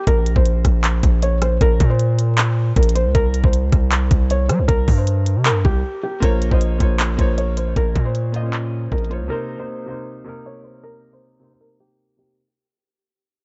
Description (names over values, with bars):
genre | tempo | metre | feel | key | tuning
hip hop, trap | 156 BPM | 4/4 | half-time | C phrygian | A4 = 436 Hz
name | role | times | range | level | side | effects
felt-muted upright piano | melody | 0.0-12.3 s | G4 to Db5 | -27 LUFS | equal | low-pass filter, delay
distorted 808-style bass | bass | 0.1-9.3 s | Bb1 to G3 | -21 LUFS | equal | distortion
trap drum kit | drums | 0.1-9.2 s | handclaps, hi-hat, kick drum, rim click | -20 LUFS | equal | none
clear concert grand piano | accompaniment | 6.2-12.4 s | C3 to Eb5 | -30 LUFS | equal | low-pass filter
room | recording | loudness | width
small room reverb | vinyl crackle, low-pass filter, nothing above 8.0 kHz | -18 LUFS | mono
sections
0.0-6.2 A section; 6.2-12.4 B section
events
break 5.8-6.2; fade-out 6.2-12.4; filter sweep 6.2-12.4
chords
0.1 Bbsus2; 3.1 C5; 6.2 Bbmadd9; 9.3 Cm7